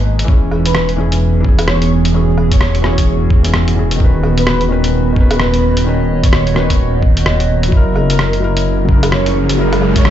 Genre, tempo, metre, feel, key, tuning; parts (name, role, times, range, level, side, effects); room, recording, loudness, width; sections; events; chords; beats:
future garage; 129 BPM; 4/4; swing 60% on 16ths; A4 = 440 Hz
felt-muted upright piano; accompaniment; 0.0-10.1 s; B2 to B4; -19 LUFS; left 1 dB; vintage 12-bit sampler grit, sidechain pumping, digital delay
warbly tape-like pad; sustained chords; 0.0-10.1 s; E3 to A#5; -20 LUFS; right 1 dB; chorus, built-in reverb, phaser, sidechain pumping
dark detuned saw bass; bass; 0.0-10.1 s; D#1 to G#1; -15 LUFS; equal; sidechain pumping
lo-fi sampler-style drum kit; drums; 0.2-10.1 s; hi-hat, rim click, woodblock; -19 LUFS; equal
electronic kick drum; drums; 0.3-10.0 s; -12 LUFS; equal
breathy flute-like synth lead; melody; 0.7-10.1 s; A#4 to C#5; -24 LUFS; right 1 dB; tremolo, ensemble chorus, dub echo
riser; sound effects; 8.5-10.1 s; -22 LUFS; right 1 dB
little or no reverb; played on a big sound system in a bare room, large studio reverb, nothing above 7.8 kHz; -11 LUFS; side -11 dB against mid
0.0-10.1 A section
riser 8.5-10.1
0.3 E6; 4.0 Badd9/D#; 7.7 F#7
| 0.28 0.75 1.21 1.68 | 2.15 2.61 3.08 3.54 | 4.00 4.47 4.93 5.40 | 5.87 6.33 6.80 7.26 | 7.73 8.19 8.66 9.12 | 9.59 10.05